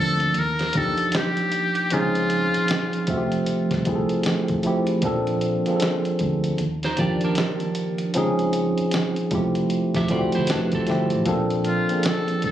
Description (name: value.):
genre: R&B, neo-soul.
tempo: 77 BPM.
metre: 4/4.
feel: swing 63% on 16ths.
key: Bb major.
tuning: A4 = 439 Hz.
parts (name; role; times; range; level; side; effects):
trumpet with metal mute; melody; 0.0-3.5, 11.7-12.5 s; F4 to Bb4; -25 LUFS; left 1 dB; tape echo.
tine electric piano; accompaniment; 0.0-12.5 s; Eb3 to E5; -22 LUFS; equal; medium stereo tremolo.
vintage muted fingered electric bass; bass; 0.0-12.5 s; F1 to F2; -29 LUFS; right 1 dB; none.
dusty soul sampler-style drum kit; drums; 0.2-12.5 s; hi-hat, kick drum, snare drum; -28 LUFS; equal; none.
electric guitar at the edge of break-up; second line; 6.8-11.2 s; C4 to E5; -29 LUFS; right 4 dB; none.
room: moderate studio reverb, RT60 0.7 s.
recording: recorded on a phone in the room, club reverb.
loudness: -20 LUFS.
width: side -11 dB against mid.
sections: 0.0-12.5 A section.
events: none.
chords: 0.4 Ebmaj9; 1.9 Dbmaj9; 3.1 Fmaj9; 5.0 Bbmaj9; 6.6 Ebmaj9; 8.1 Dbmaj9; 9.3 Fmaj9; 11.3 Bbmaj9.